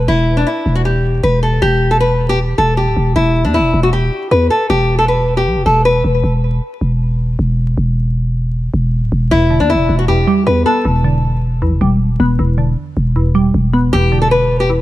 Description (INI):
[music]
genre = hip hop, trap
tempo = 156 BPM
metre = 4/4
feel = half-time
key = E minor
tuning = A4 = 438 Hz
[part]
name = growling 808-style bass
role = bass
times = 0.0-14.8 s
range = D1 to E2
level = -14 LUFS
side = equal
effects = none
[part]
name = nylon-string guitar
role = melody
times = 0.1-6.0, 9.3-10.8, 13.9-14.7 s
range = D4 to B4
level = -14 LUFS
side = left 1 dB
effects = ping-pong delay
[part]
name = glassy wavetable pluck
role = accompaniment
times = 9.3-14.8 s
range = E2 to B3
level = -16 LUFS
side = right 1 dB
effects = chorus
[sound]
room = light reverb, small room ambience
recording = vinyl crackle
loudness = -12 LUFS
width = side -16 dB against mid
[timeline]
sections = 0.0-14.8 A section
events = break 6.2-9.3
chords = 0.1 Em; 6.2 N.C.; 9.3 Em7